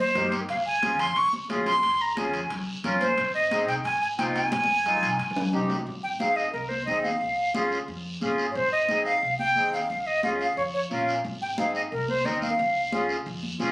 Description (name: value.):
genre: latin, cumbia.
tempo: 178 BPM.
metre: 4/4.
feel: straight.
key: Ab major.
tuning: A4 = 439 Hz.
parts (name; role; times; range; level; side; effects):
silver concert flute; melody; 0.0-13.1 s; Bb4 to Db6; -24 LUFS; equal; none.
accordion; accompaniment; 0.2-13.7 s; C4 to Bb4; -29 LUFS; equal; none.
upright bass; bass; 0.2-13.7 s; Ab1 to G2; -38 LUFS; equal; none.
congas; percussion; 0.2-13.7 s; none; -34 LUFS; left 1 dB; none.
guiro; percussion; 0.2-13.7 s; none; -40 LUFS; equal; none.
timbales; percussion; 0.2-5.8 s; none; -36 LUFS; right 1 dB; none.
room: moderate studio reverb, RT60 1.0 s.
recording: recorded on a phone in the room, club reverb.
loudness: -23 LUFS.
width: side -21 dB against mid.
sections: 0.0-5.9 A section; 5.9-13.7 B section.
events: drum fill 4.5-5.9.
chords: 0.5 Db; 3.2 Ab; 7.2 Db; 8.6 Ab; 9.9 Db; 11.2 Ab; 12.6 Db.